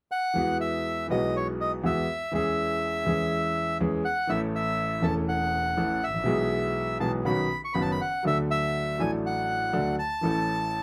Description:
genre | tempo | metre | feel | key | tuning
tango | 122 BPM | 4/4 | rubato | E major | A4 = 441 Hz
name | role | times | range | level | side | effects
bandoneon | melody | 0.1-10.8 s | C#5 to C#6 | -30 LUFS | equal | none
clear concert grand piano | accompaniment | 0.3-10.8 s | E1 to A4 | -30 LUFS | equal | none
room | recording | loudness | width
light reverb | close, detailed microphones | -27 LUFS | mono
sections
0.4-10.8 A section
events
none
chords
0.4 Eadd9; 2.3 C#m/E; 4.3 A; 6.3 E/B; 7.3 Badd9; 8.3 D; 10.2 A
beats
| 0.36 0.86 1.35 1.85 | 2.34 2.83 3.32 3.81 | 4.30 4.79 5.29 5.78 | 6.27 6.77 7.26 7.76 | 8.26 8.75 9.25 9.74 | 10.23 10.73

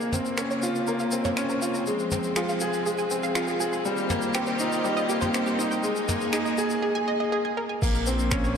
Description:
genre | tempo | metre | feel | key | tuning
piano and strings electronica | 121 BPM | 4/4 | straight | Bb dorian | A4 = 440 Hz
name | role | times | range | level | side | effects
bright studio string section | sustained chords | 0.0-8.6 s | Db3 to G4 | -33 LUFS | equal | sidechain pumping
bright upright piano | riff | 0.0-8.6 s | G3 to Ab4 | -26 LUFS | left 1 dB | ping-pong delay
dark detuned saw bass | bass | 0.0-8.6 s | Eb1 to Eb2 | -36 LUFS | equal | none
soft brush drum kit | drums | 0.0-8.5 s | crash cymbal, finger snaps, shaker, toms | -32 LUFS | equal | none
analog pluck | arpeggios | 0.4-8.5 s | G4 to C6 | -32 LUFS | right 3 dB | chorus, phaser, sidechain pumping, ping-pong delay
electronic kick drum | drums | 7.8-8.4 s | none | -26 LUFS | equal | none
room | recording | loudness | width
wet lush hall reverb, RT60 2.5 s | none | -23 LUFS | side -7 dB against mid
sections
0.0-7.8 A section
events
build-up 0.0-7.8; filter sweep on synth arpeggio sound 0.0-7.8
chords
0.0 Bbmadd9; 1.9 Fm; 3.9 Eb6; 5.8 Absus2; 7.8 Bbmadd9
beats
0.38 0.88 1.37 | 1.87 2.37 2.86 3.36 | 3.85 4.35 4.84 5.34 | 5.84 6.33 6.83 7.33 | 7.82 8.32

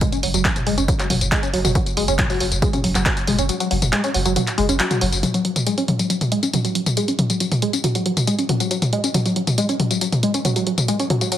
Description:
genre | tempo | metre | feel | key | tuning
driving peak-time techno | 138 BPM | 4/4 | straight | unclear | A4 = 438 Hz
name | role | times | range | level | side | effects
tight sequenced synth | riff | 0.0-11.4 s | F#3 to C#4 | -21 LUFS | equal | chorus, overdrive, sidechain pumping, tape echo
electronic kick drum | drums | 0.0-3.1 s | none | -22 LUFS | equal | studio reverb
punchy analog drum machine | drums | 0.0-11.4 s | handclaps, hi-hat, tambourine, toms | -21 LUFS | left 1 dB | studio reverb
saturated sub bass | bass | 0.2-5.2 s | F#1 | -23 LUFS | equal | overdrive, sidechain pumping, low-pass filter
room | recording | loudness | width
light reverb | heavily compressed radio sound | -17 LUFS | side -11 dB against mid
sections
0.0-5.2 A section; 5.2-11.4 B section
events
kick drops out 3.5-5.2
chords
0.0 F#5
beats
| 0.01 0.45 0.88 1.32 | 1.75 2.19 2.62 3.06 | 3.49 3.93 4.36 4.80 | 5.23 5.67 6.10 6.54 | 6.97 7.41 7.84 8.27 | 8.71 9.14 9.58 10.01 | 10.45 10.88 11.32

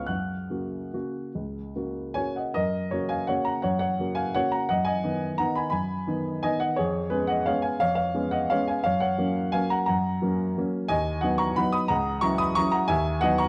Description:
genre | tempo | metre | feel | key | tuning
classical, piano waltz | 138-190 BPM | 3/4 | rubato | F# major | A4 = 441 Hz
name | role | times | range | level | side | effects
warm baby grand piano | solo | 0.0-13.5 s | C#2 to F#6 | -26 LUFS | equal | none
room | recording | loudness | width
light reverb | close, detailed microphones | -26 LUFS | mono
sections
0.0-2.6 A section; 2.6-13.5 B section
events
none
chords
0.1 F#; 4.7 G#m7/F#; 6.8 C#7/E#; 8.9 F#; 10.9 B/D#; 11.9 F#7/C#; 12.9 B/D#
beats
| 0.09 0.51 0.94 | 1.36 1.75 2.17 | 2.56 2.91 3.27 | 3.62 3.96 4.33 | 4.69 5.04 5.39 | 5.73 6.08 6.44 | 6.79 7.13 7.48 | 7.82 8.16 8.51 | 8.85 9.20 9.54 | 9.89 10.22 10.57 | 10.89 11.22 11.55 | 11.88 12.21 12.56 | 12.90 13.23

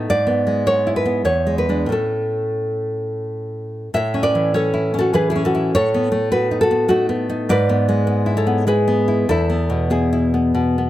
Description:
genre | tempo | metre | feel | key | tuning
romantic piece for solo classical guitar | 87-106 BPM | 3/4 | rubato | A major | A4 = 440 Hz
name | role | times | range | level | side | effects
nylon-string guitar | solo | 0.0-10.9 s | E2 to E5 | -16 LUFS | equal | none
room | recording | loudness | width
light reverb | close, detailed microphones | -16 LUFS | side -14 dB against mid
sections
0.0-3.9 A section; 3.9-10.9 A section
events
none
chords
0.1 E7/G#; 1.3 E7; 1.9 A; 5.7 B7/A; 7.5 E7/G#; 9.3 E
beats
| 0.09 0.66 1.26 | 1.91 2.59 3.27 | 3.94 4.55 5.15 | 5.74 6.32 6.89 | 7.50 8.08 8.66 | 9.28 9.92 10.56

